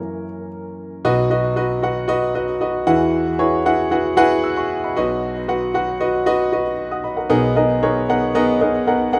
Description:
pop; 115 BPM; 4/4; straight; B major; A4 = 439 Hz
warm concert grand piano; solo; 0.0-9.2 s; B1 to E6; -19 LUFS; equal; digital delay
light reverb; rough home demo mix; -19 LUFS; mono
0.0-1.0 A section; 1.0-9.2 B section
grand piano solo 0.0-1.0
0.0 F#7; 1.0 B; 2.9 Eadd9; 5.0 B; 7.3 G#madd9/B

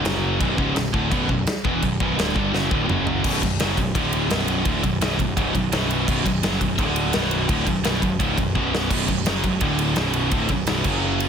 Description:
heavy metal; 169 BPM; 4/4; straight; B minor; A4 = 441 Hz
scooped high-gain guitar; riff; 0.0-11.3 s; B1 to G3; -22 LUFS; right 1 dB; distortion
fuzz picked electric bass; bass; 0.0-11.3 s; B0 to G1; -27 LUFS; equal; overdrive
big rock drum kit; drums; 0.1-11.3 s; crash cymbal, kick drum, ride cymbal, snare drum, toms; -25 LUFS; equal
light reverb; dense, heavily limited modern master; -19 LUFS; side -7 dB against mid
0.0-3.2 A section; 3.2-11.3 B section
drum fill 2.5-3.2, 8.6-8.9
0.0 F#5; 0.4 Bm; 2.9 F#5; 3.2 B5; 3.9 D5; 4.3 Bm; 6.8 D5; 7.1 Bm; 9.6 D5; 10.0 Bm

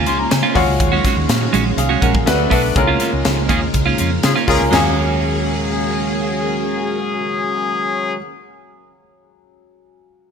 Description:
polished 1980s jazz-funk pop; 122 BPM; 4/4; straight; Eb minor; A4 = 437 Hz
clear baby grand piano; accompaniment; 0.0-10.3 s; Gb3 to C6; -20 LUFS; left 2 dB; wide subtle chorus
string machine, full ensemble; sustained chords; 0.0-8.2 s; Db3 to F5; -24 LUFS; equal; ensemble chorus
clean electric guitar; riff; 0.0-8.3 s; Ab3 to Gb4; -22 LUFS; right 6 dB; wide subtle chorus
vintage muted fingered electric bass; bass; 0.0-8.2 s; Bb1 to Db3; -21 LUFS; equal
crisp fusion drum kit; drums; 0.1-4.8 s; china cymbal, hi-hat, kick drum, snare drum, toms; -20 LUFS; equal; gated reverb
clear horn section; second line; 3.5-8.2 s; Gb3 to Ab4; -21 LUFS; left 4 dB
light reverb, studio ambience; bright 1980s-style digital production; -14 LUFS; side -6 dB against mid
0.0-4.7 A section; 4.7-8.7 B section
grand piano fill 0.0-0.8; band accent 2.8-4.7
0.0 Db6; 0.6 Ebm11; 2.3 D6; 2.8 Db6; 4.7 Ebm11

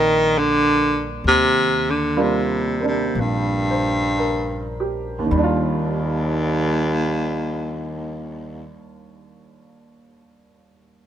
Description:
jazz ballad; 52-69 BPM; 4/4; swing 68% on 8ths; Eb major; A4 = 441 Hz
warm baritone saxophone; melody; 0.0-8.8 s; Eb2 to Eb3; -19 LUFS; equal
warm upright piano; accompaniment; 0.0-11.1 s; Eb2 to C5; -25 LUFS; right 2 dB
upright bass; bass; 0.0-8.7 s; Bb1 to Eb2; -27 LUFS; left 1 dB
light reverb; minimal, uncompressed stereo recording; -18 LUFS; side -10 dB against mid
0.0-5.3 A section; 5.3-9.8 B section
slowing down 0.0-5.3
0.0 Ebmaj7

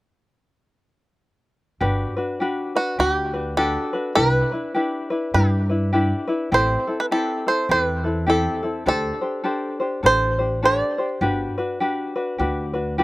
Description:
Hawaiian; 102 BPM; 4/4; swing 60% on 8ths; G major; A4 = 438 Hz
tenor ukulele; accompaniment; 1.8-13.0 s; C4 to C5; -23 LUFS; left 2 dB
upright bass; bass; 1.8-13.0 s; G1 to G2; -24 LUFS; equal
bluegrass banjo; melody; 2.8-11.1 s; F#4 to D5; -21 LUFS; right 2 dB
little or no reverb; recorded outdoors, with no room sound; -19 LUFS; side -18 dB against mid
1.8-13.0 A section
1.8 Gmaj7; 4.2 Cmaj9 (rootless); 6.5 Am7; 8.9 D7sus4; 11.2 Gmaj7

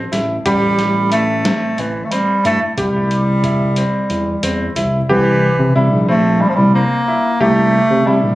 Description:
progressive instrumental, band music in an uneven meter; 181 BPM (eighths); 7/8; straight; A4 = 444 Hz
clear bass clarinet; melody; 0.0-8.3 s; E3 to Bb3; -16 LUFS; right 1 dB; plate reverb, analog delay
smooth synth bass; bass; 0.0-8.3 s; A1 to C3; -17 LUFS; equal
bright grand piano; arpeggios; 0.1-8.3 s; C4 to G4; -21 LUFS; equal; plate reverb
boom bap sampler-style drum kit; drums; 0.1-4.9 s; hi-hat, kick drum, snare drum; -23 LUFS; equal
light reverb; recorded on a phone in the room, club reverb, compression; -13 LUFS; side -16 dB against mid
0.0-5.1 A section; 5.1-8.3 B section
break 3.8-5.1
0.5 Am7; 2.8 C; 5.1 C7

